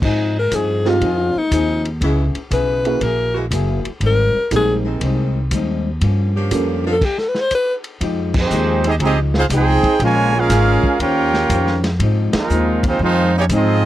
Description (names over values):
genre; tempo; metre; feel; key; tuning
jazz, big band swing; 120 BPM; 4/4; swing 67% on 8ths; F minor; A4 = 444 Hz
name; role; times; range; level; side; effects
clear alto saxophone; melody; 0.0-7.7 s; Eb4 to C5; -18 LUFS; left 2 dB; none
vintage hollow-body jazz guitar; accompaniment; 0.0-13.9 s; G2 to C5; -24 LUFS; left 4 dB; none
upright bass; bass; 0.0-13.9 s; Gb1 to Ab2; -19 LUFS; equal; none
vintage drum kit; drums; 0.0-13.7 s; crash cymbal, hi-hat, kick drum, ride cymbal, snare drum; -25 LUFS; equal; none
dark saxophone section; sustained chords; 0.8-7.0 s; Db3 to G4; -24 LUFS; right 1 dB; none
dark baby grand piano; accompaniment; 0.9-7.0 s; Ab3 to A4; -22 LUFS; right 8 dB; none
clear trumpet section; melody; 8.4-13.9 s; Ab3 to Ab5; -18 LUFS; right 2 dB; none
bright trombone section; second line; 8.4-13.9 s; Db3 to Ab4; -21 LUFS; right 4 dB; none
room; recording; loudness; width
little or no reverb; dry, close 1970s-style studio recording; -15 LUFS; side -14 dB against mid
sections
0.0-8.0 A section; 8.0-13.9 B section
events
alto saxophone solo 0.0-8.0; band accent 8.3, 12.3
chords
0.0 Fm7; 2.0 Dbm7; 3.0 Gb9; 4.0 Abmaj7; 6.0 Gm7b5; 7.0 N.C.; 8.0 Fm9; 10.0 Bbm7; 11.0 Eb13; 12.0 Ab6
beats
| 0.02 0.52 1.02 1.52 | 2.02 2.52 3.02 3.52 | 4.02 4.52 5.02 5.52 | 6.02 6.52 7.02 7.51 | 8.01 8.51 9.01 9.51 | 10.01 10.51 11.01 11.51 | 12.00 12.50 13.00 13.50